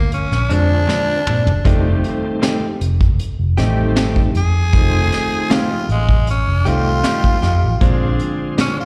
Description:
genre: straight-eighth soul blues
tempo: 78 BPM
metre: 4/4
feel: straight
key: unclear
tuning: A4 = 440 Hz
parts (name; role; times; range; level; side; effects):
- raspy tenor saxophone; melody; 0.0-8.8 s; Ab3 to Ab4; -23 LUFS; equal; slapback echo
- vintage muted fingered electric bass; bass; 0.0-8.2 s; F1 to Bb2; -19 LUFS; equal; none
- vintage brush drum kit; drums; 0.1-8.8 s; hi-hat, kick drum, snare drum, toms; -20 LUFS; equal; none
- tonewheel organ; accompaniment; 0.5-8.8 s; D3 to C4; -24 LUFS; equal; slow rotary speaker, chorus vibrato, slapback echo
- mellow horn section; sustained chords; 0.5-8.6 s; G3 to G5; -34 LUFS; equal; none
- direct-recorded clean electric guitar; stabs; 0.5-8.8 s; Bb2 to G4; -28 LUFS; equal; slapback echo
room: studio ambience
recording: live gig heard through the venue's PA, recital hall reverb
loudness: -16 LUFS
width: mono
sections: 0.0-8.8 A section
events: tenor saxophone solo 0.0-8.8; drum fill 0.9-1.7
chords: 0.0 Bb9; 1.7 F9; 7.8 Bb9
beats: 0.12 0.89 | 1.66 2.43 3.20 3.96 | 4.74 5.50 6.27 7.04 | 7.81 8.58

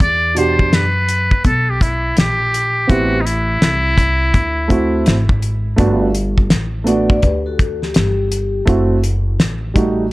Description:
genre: hip hop, jazz-hop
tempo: 83 BPM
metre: 4/4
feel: swing 64% on 16ths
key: E minor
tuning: A4 = 441 Hz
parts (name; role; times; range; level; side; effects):
- trumpet with metal mute; melody; 0.0-5.4 s; D#4 to D5; -17 LUFS; equal; none
- upright bass; bass; 0.0-10.1 s; F#1 to F#2; -19 LUFS; equal; none
- cloth-damped thuddy drum kit; drums; 0.0-10.0 s; hi-hat, kick drum, snare drum; -15 LUFS; equal; none
- dark concert grand piano; accompaniment; 0.3-10.0 s; B2 to G4; -17 LUFS; right 2 dB; none
- vibraphone with soft mallets; second line; 6.9-8.6 s; F#4 to F#5; -22 LUFS; left 4 dB; none
room: small room reverb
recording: cassette tape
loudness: -13 LUFS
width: side -20 dB against mid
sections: 0.0-10.1 A section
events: none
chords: 0.0 Em9; 2.9 Am9; 4.3 D7; 5.8 Gmaj9; 8.7 F#m7b5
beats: | 0.00 0.72 1.45 2.17 | 2.89 3.61 4.34 5.06 | 5.78 6.51 7.23 7.95 | 8.68 9.40 10.12

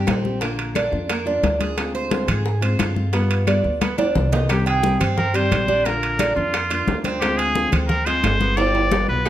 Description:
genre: latin, Cuban son and guajira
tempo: 176 BPM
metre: 4/4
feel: straight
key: unclear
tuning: A4 = 438 Hz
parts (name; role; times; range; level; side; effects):
- nylon-string guitar; accompaniment; 0.0-9.3 s; C3 to G4; -26 LUFS; left 3 dB; none
- Cuban tres; arpeggios; 0.0-9.3 s; G3 to G5; -25 LUFS; right 3 dB; none
- upright bass; bass; 0.0-9.3 s; G1 to Ab2; -24 LUFS; equal; none
- bongos; percussion; 0.1-9.3 s; none; -31 LUFS; left 5 dB; none
- claves; percussion; 0.1-9.3 s; none; -36 LUFS; left 5 dB; none
- congas; percussion; 0.1-9.3 s; none; -26 LUFS; left 3 dB; none
- timbales; percussion; 0.1-9.3 s; none; -27 LUFS; right 5 dB; none
- trumpet with straight mute; melody; 4.5-9.3 s; F4 to D5; -22 LUFS; equal; none
room: moderate large studio reverb, RT60 0.8 s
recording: none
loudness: -18 LUFS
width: side -12 dB against mid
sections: 0.0-4.5 A section; 4.5-9.3 B section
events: drum fill 3.8-4.5, 8.6-9.3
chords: 0.4 Bb; 1.8 Dm7b5; 3.1 G7; 4.5 Cm; 5.9 Bb; 7.2 Dm7b5; 8.6 G7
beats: 0.07 | 0.41 0.75 1.09 1.43 | 1.77 2.12 2.46 2.79 | 3.13 3.48 3.82 4.16 | 4.50 4.84 5.18 5.52 | 5.86 6.20 6.54 6.88 | 7.22 7.56 7.90 8.24 | 8.58 8.92 9.26

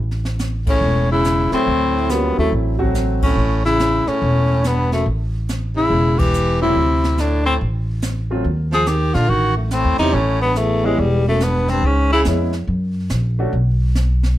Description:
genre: jazz, small-group swing and bop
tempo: 142 BPM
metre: 4/4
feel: swing 66% on 8ths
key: A mixolydian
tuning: A4 = 441 Hz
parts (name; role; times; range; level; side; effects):
- upright bass; bass; 0.0-14.3 s; E1 to A#2; -19 LUFS; equal; none
- jazz brush drum kit; drums; 0.1-14.4 s; brushed snare drum, hi-hat, kick drum, ride cymbal, snare drum; -25 LUFS; equal; none
- clear tenor saxophone; melody; 0.7-12.2 s; G3 to G#4; -19 LUFS; left 2 dB; none
- bright baritone saxophone; second line; 0.7-12.3 s; E2 to F3; -23 LUFS; right 4 dB; none
- warm grand piano; accompaniment; 1.5-3.3, 6.6-13.5 s; F#3 to F#4; -22 LUFS; equal; none
room: light reverb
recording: dark, warm production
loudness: -15 LUFS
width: side -14 dB against mid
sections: 0.0-14.4 A section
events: band accent 0.6, 3.2, 6.1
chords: 0.0 A; 1.7 D7; 3.4 A7; 6.8 D7(no3); 8.5 D#5; 10.1 A7(no3); 11.8 C#m7; 12.7 F#; 13.5 N.C.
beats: 0.40 0.82 1.25 | 1.67 2.09 2.52 2.94 | 3.37 3.79 4.21 4.64 | 5.06 5.49 5.91 6.33 | 6.76 7.18 7.61 8.03 | 8.45 8.87 9.30 9.72 | 10.14 10.57 10.99 11.41 | 11.84 12.26 12.68 13.10 | 13.53 13.95 14.37

